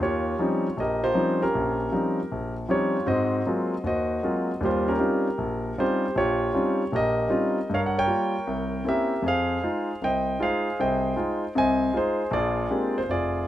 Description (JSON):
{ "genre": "solo jazz", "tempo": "156 BPM", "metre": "4/4", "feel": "swing 67% on 8ths", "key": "Eb mixolydian", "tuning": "A4 = 442 Hz", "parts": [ { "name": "warm concert grand piano", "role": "solo", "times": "0.0-13.5 s", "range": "F1 to Ab5", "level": "-23 LUFS", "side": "equal", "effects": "none" } ], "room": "moderate small room reverb, RT60 0.6 s", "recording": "rough home demo mix", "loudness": "-23 LUFS", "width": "side -13 dB against mid", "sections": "0.0-13.5 A section", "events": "none", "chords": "0.0 Eb13; 3.1 Ab13; 4.6 Eb13; 7.7 Gm7b5; 8.5 C7b9; 9.2 Fm7; 12.3 Bb13", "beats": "0.38 0.77 1.15 | 1.53 1.92 2.31 2.69 | 3.08 3.46 3.85 4.23 | 4.62 5.00 5.39 5.77 | 6.16 6.54 6.93 7.31 | 7.70 8.08 8.47 8.86 | 9.24 9.62 10.01 10.40 | 10.78 11.17 11.55 11.94 | 12.32 12.71 13.09" }